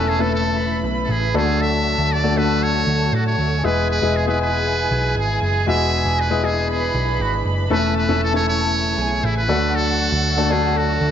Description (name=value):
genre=piano-driven pop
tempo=118 BPM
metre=4/4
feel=straight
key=E mixolydian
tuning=A4 = 442 Hz
part: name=trumpet with metal mute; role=melody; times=0.0-11.1 s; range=E4 to E5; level=-23 LUFS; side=right 1 dB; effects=none
part: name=warm studio violin section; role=second line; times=0.0-11.1 s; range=F#4 to B5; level=-26 LUFS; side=right 2 dB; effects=none
part: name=clear baby grand piano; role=accompaniment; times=0.0-11.1 s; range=D3 to B4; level=-22 LUFS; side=left 4 dB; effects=none
part: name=tonewheel organ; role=sustained chords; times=0.0-11.1 s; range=B2 to F#4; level=-30 LUFS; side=right 2 dB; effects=overdrive, wide subtle chorus
part: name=hollow-body short-scale picked electric bass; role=bass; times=0.0-11.1 s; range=E1 to A2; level=-22 LUFS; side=right 1 dB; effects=none
room=moderate large studio reverb, RT60 0.8 s, small room reverb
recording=nothing above 7.5 kHz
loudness=-17 LUFS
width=side -9 dB against mid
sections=0.0-11.1 A section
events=none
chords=0.0 A/E; 1.3 D; 3.6 E; 7.7 A/E; 9.5 D